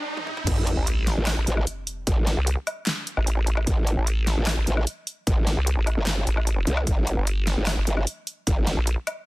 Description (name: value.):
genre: heavy wobble dubstep.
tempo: 150 BPM.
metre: 4/4.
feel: half-time.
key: A phrygian.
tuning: A4 = 439 Hz.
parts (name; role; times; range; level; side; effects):
riser and sub drop; sound effects; 0.0-2.1 s; none; -31 LUFS; right 1 dB; none.
big-room dance drum kit; drums; 0.2-9.2 s; crash cymbal, handclaps, hi-hat, snare drum, toms, woodblock; -28 LUFS; equal; none.
growl bass; bass; 0.5-8.8 s; G1 to C2; -24 LUFS; equal; chorus, overdrive.
electronic kick drum; drums; 0.5-8.6 s; none; -24 LUFS; equal; none.
vowel-sweep wobble bass; bass; 0.8-9.0 s; G1 to C2; -23 LUFS; equal; chorus, overdrive.
room: little or no reverb.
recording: dense, heavily limited modern master, high-pass filter.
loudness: -22 LUFS.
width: side -20 dB against mid.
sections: 0.5-9.3 A section.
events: break 0.0-0.5; riser 0.0-0.5; drum fill 0.2; drop 0.5-9.3; impact 0.5-2.1.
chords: none.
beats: 0.07 | 0.47 0.87 1.27 1.67 | 2.07 2.47 2.87 3.27 | 3.67 4.07 4.47 4.87 | 5.27 5.67 6.07 6.47 | 6.87 7.27 7.67 8.07 | 8.47 8.87.